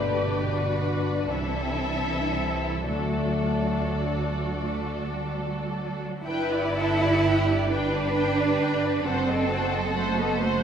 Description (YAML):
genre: classical, slow romantic movement for symphony orchestra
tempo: 34-45 BPM (dotted quarters)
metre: 6/8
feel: rubato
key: G major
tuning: A4 = 439 Hz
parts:
  - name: dark studio violin section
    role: melody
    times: 0.0-10.6 s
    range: D5 to G5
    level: -34 LUFS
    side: left 4 dB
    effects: none
  - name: rich symphonic violin section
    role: second line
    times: 0.0-10.6 s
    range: G4 to C5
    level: -31 LUFS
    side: left 3 dB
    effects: none
  - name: warm symphonic viola section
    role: accompaniment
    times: 0.0-10.6 s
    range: D4 to D5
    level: -33 LUFS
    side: right 1 dB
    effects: none
  - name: warm French horn section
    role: sustained chords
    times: 0.0-4.5 s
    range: A3 to D4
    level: -30 LUFS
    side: left 4 dB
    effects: none
  - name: warm symphonic cello section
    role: bass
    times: 0.0-10.6 s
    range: B2 to E4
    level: -28 LUFS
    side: right 3 dB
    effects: none
  - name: warm symphonic double bass section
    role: bass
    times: 0.0-10.6 s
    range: F#1 to D2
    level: -30 LUFS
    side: right 2 dB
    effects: none
room: wet concert hall reverb, RT60 2.3 s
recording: none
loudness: -23 LUFS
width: side -8 dB against mid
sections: 0.0-6.3 A section; 6.3-10.6 A section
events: none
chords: 0.0 G; 1.3 Am/C; 2.9 D; 6.3 G; 9.0 F#dim7